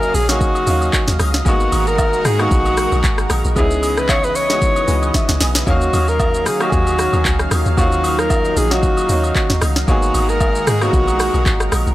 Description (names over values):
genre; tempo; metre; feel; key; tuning
amapiano; 114 BPM; 4/4; swing 55% on 16ths; Eb minor; A4 = 440 Hz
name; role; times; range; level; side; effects
breathy alto saxophone; melody; 0.0-11.7 s; Gb4 to Db5; -19 LUFS; equal; tape echo
bright grand piano; accompaniment; 0.0-11.9 s; F3 to Ab5; -24 LUFS; equal; none
lush unison pad; sustained chords; 0.0-11.9 s; Db3 to F5; -24 LUFS; equal; chorus, sidechain pumping
deep log drum bass; bass; 0.0-11.9 s; Ab1 to Eb3; -19 LUFS; equal; none
afro-pop drum kit; drums; 0.0-11.9 s; handclaps, hi-hat, kick drum, rim click, shaker, snare drum; -19 LUFS; equal; none
agogo bells and woodblock; percussion; 0.3-11.9 s; none; -28 LUFS; right 1 dB; none
room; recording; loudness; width
studio ambience; dry, gritty hardware recording; -14 LUFS; side -15 dB against mid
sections
0.0-11.9 A section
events
grand piano fill 4.9-5.7; drum fill 5.1-5.7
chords
0.0 Ebm9; 1.5 Abm9; 3.6 Dbm9; 5.7 Ebm9; 9.9 Abm9